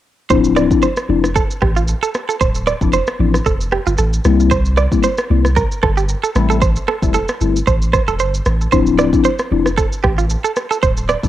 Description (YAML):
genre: afrobeats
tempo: 114 BPM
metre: 4/4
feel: swing 55% on 16ths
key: D minor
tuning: A4 = 438 Hz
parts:
  - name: mellow tine electric piano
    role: accompaniment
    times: 0.3-11.3 s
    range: F3 to E4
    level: -16 LUFS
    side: left 7 dB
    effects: phaser, cassette tape
  - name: direct-recorded clean electric guitar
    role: riff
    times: 0.3-11.2 s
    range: F4 to D5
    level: -19 LUFS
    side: right 7 dB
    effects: cassette tape, analog delay
  - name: punchy sub bass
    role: bass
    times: 0.3-11.3 s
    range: D1 to C2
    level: -18 LUFS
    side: equal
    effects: none
  - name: afro-pop drum kit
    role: drums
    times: 0.3-11.3 s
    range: kick drum, rim click, shaker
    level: -19 LUFS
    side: equal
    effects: cassette tape
room: light reverb, digital ambience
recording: home recording on cassette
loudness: -13 LUFS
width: side -13 dB against mid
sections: 0.3-11.3 A section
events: none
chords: 0.3 Dm9; 4.2 C7; 6.4 Am7; 8.7 Dm9